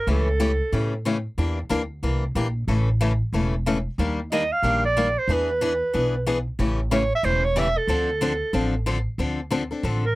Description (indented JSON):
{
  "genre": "acoustic string swing (jazz manouche)",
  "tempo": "184 BPM",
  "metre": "4/4",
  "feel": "swing 59% on 8ths",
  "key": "D minor",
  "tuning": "A4 = 440 Hz",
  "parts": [
    { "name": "breathy clarinet", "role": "melody", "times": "0.0-1.0, 4.3-10.2 s", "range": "A4 to F5", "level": "-23 LUFS", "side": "right 2 dB", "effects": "none" },
    { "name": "picked steel-string acoustic guitar", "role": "accompaniment", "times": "0.1-10.0 s", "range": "C#3 to A4", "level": "-25 LUFS", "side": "left 3 dB", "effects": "none" },
    { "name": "upright bass", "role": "bass", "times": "0.1-10.2 s", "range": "E1 to A2", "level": "-25 LUFS", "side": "equal", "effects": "none" }
  ],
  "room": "light reverb",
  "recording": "none",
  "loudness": "-21 LUFS",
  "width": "side -19 dB against mid",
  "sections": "0.0-9.2 A section",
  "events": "none",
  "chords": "0.1 A7/C#; 1.4 Em7b5; 2.7 A; 4.0 Ebmaj7; 5.3 E7; 6.6 A7; 7.9 Dm7"
}